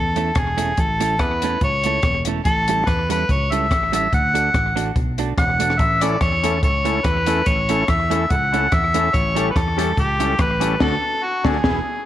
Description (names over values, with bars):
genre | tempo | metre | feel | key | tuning
ska | 144 BPM | 4/4 | swing 53% on 8ths | A major | A4 = 440 Hz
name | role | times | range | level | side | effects
mellow harmonica | melody | 0.0-12.0 s | F#4 to F#5 | -20 LUFS | equal | none
fingered electric bass | bass | 0.0-11.8 s | E1 to E2 | -24 LUFS | equal | none
clean electric guitar | accompaniment | 0.2-11.8 s | G3 to B4 | -27 LUFS | right 8 dB | none
compact cocktail drum kit | drums | 0.2-11.8 s | crash cymbal, hi-hat, kick drum, rim click, snare drum | -22 LUFS | equal | none
bright tonewheel organ | stabs | 6.0-11.8 s | C#4 to A4 | -26 LUFS | left 8 dB | none
room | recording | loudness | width
moderate echo chamber reverb, RT60 1.9 s | 1960s-style stereo with parts hard left and right | -16 LUFS | side -12 dB against mid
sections
0.0-12.1 A section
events
band accent 10.8-12.1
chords
0.0 A; 2.5 A7; 4.1 D; 5.8 A; 9.1 A7; 10.8 D